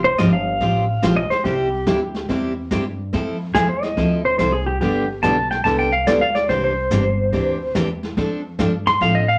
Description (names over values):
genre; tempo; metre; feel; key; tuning
country, western swing; 143 BPM; 4/4; swing 66% on 8ths; F major; A4 = 438 Hz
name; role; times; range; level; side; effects
pedal steel guitar; second line; 0.0-9.4 s; G4 to C6; -22 LUFS; equal; none
upright bass; bass; 0.0-9.4 s; F1 to A2; -28 LUFS; equal; none
picked steel-string acoustic guitar; accompaniment; 0.2-9.2 s; C3 to C5; -24 LUFS; equal; none
jazz brush drum kit; drums; 0.2-9.4 s; brushed snare drum, hi-hat, kick drum, snare drum; -29 LUFS; equal; none
room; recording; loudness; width
wet small room reverb, RT60 0.5 s; none; -20 LUFS; mono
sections
0.0-9.4 A section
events
pedal steel guitar solo 0.0-9.4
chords
0.0 Fsus2; 1.4 C; 3.1 Fmaj7; 4.8 G; 6.5 Cadd9; 8.2 F6